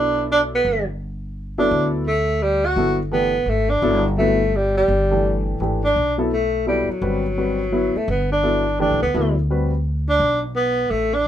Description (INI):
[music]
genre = jazz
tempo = 169 BPM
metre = 3/4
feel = swing 63% on 8ths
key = G major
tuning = A4 = 440 Hz
[part]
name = breathy tenor saxophone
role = melody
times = 0.0-11.3 s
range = F#3 to F#4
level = -19 LUFS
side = equal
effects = none
[part]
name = warm upright piano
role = accompaniment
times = 0.0-9.7 s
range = E3 to B4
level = -23 LUFS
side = left 2 dB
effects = none
[part]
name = upright bass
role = bass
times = 0.0-11.2 s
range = G1 to D2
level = -24 LUFS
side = equal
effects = none
[sound]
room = light reverb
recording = minimal, uncompressed stereo recording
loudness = -17 LUFS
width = side -10 dB against mid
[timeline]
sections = 0.0-11.3 A section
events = none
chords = 0.0 Gmaj9